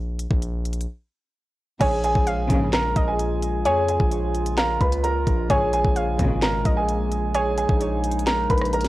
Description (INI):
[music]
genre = hip hop, trap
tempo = 130 BPM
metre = 4/4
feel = half-time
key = Bb minor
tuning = A4 = 441 Hz
[part]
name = hard-hitting 808-style bass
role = bass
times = 0.0-8.9 s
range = Ab1 to F2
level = -26 LUFS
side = equal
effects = tube saturation
[part]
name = trap drum kit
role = drums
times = 0.2-8.9 s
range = crash cymbal, handclaps, hi-hat, kick drum, rim click, snare drum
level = -24 LUFS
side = equal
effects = none
[part]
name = clear concert grand piano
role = melody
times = 1.8-8.9 s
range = Ab4 to Cb6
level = -24 LUFS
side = right 2 dB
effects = none
[part]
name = soft round pluck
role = second line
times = 1.8-8.7 s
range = Bb4 to F5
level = -28 LUFS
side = left 1 dB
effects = chorus, analog delay
[part]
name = warbly tape-like pad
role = sustained chords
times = 1.8-8.9 s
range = Db3 to F4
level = -31 LUFS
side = equal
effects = chorus, built-in reverb
[part]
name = dark studio string section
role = stabs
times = 1.8-6.5 s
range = Bb1 to Db3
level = -28 LUFS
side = left 1 dB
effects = none
[sound]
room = digital ambience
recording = dry, gritty hardware recording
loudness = -20 LUFS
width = side -17 dB against mid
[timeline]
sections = 0.0-1.8 A section; 1.8-8.9 B section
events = break 0.0-1.8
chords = 0.0 N.C.; 1.8 Bbm7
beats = 0.42 0.88 1.34 | 1.81 2.27 2.73 3.19 | 3.65 4.12 4.58 5.04 | 5.50 5.96 6.42 6.88 | 7.34 7.81 8.27 8.73